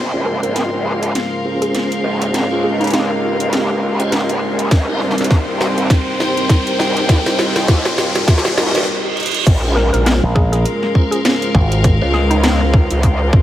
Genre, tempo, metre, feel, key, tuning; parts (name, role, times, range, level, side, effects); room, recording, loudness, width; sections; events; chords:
glitch hop; 101 BPM; 4/4; swing 58% on 16ths; Bb dorian; A4 = 440 Hz
dark analog pad; sustained chords; 0.0-13.4 s; G3 to C5; -22 LUFS; equal; chorus, sidechain pumping
growl bass; bass; 0.0-13.4 s; Ab1 to G2; -19 LUFS; equal; chorus, overdrive, high-pass filter
riser and reverse cymbal; sound effects; 0.0-9.5 s; -26 LUFS; right 1 dB
warm studio string section; texture; 0.0-13.4 s; Bb4 to C6; -24 LUFS; left 3 dB; sidechain pumping
tonewheel organ; stabs; 0.1-12.1 s; Db4 to Eb5; -25 LUFS; right 1 dB; overdrive, chorus vibrato, fast rotary speaker, vintage 12-bit sampler grit, sidechain pumping, low-pass filter, tape echo
woody wave-folded pluck; melody; 0.3-3.0, 9.8-12.5 s; Eb4 to Bb4; -24 LUFS; right 1 dB; chorus, tape echo
drum and bass drum kit; drums; 0.4-13.2 s; crash cymbal, hi-hat, snare drum; -21 LUFS; equal; overdrive
electronic kick drum; drums; 4.7-13.4 s; -12 LUFS; equal; overdrive
slap bass with an envelope filter; bass; 10.2-12.0 s; Ab1 to Bb1; -15 LUFS; equal
moderate cathedral reverb, RT60 5.3 s; dreamy mix soaked in reverb, vinyl crackle; -13 LUFS; side -12 dB against mid
0.0-9.5 A section; 9.5-13.4 B section
build-up 0.0-9.5; drum fill 0.0-8.9, 9.2; riser 0.0-8.9; filter sweep on tonewheel organ 0.0-9.5; reverse cymbal 8.3-9.5; break 8.9-9.5; drop 9.5-13.4
0.0 Bbm7; 4.7 Cm7; 9.5 Bbm7